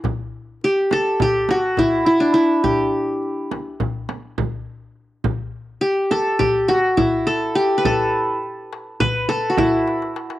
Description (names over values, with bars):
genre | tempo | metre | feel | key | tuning
Turkish makam ensemble | 208 BPM (eighths) | 9/8 | straight | E makam nihavent | A4 = 441 Hz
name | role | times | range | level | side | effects
qanun | melody | 0.0-10.4 s | D4 to B4 | -17 LUFS | equal | none
darbuka | percussion | 0.0-10.4 s | none | -28 LUFS | left 4 dB | none
frame drum | percussion | 0.0-9.7 s | none | -27 LUFS | right 6 dB | none
room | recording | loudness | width
light reverb, studio ambience | home recording on cassette | -17 LUFS | side -15 dB against mid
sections
0.0-10.4 A section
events
drum fill 9.9-10.4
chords
none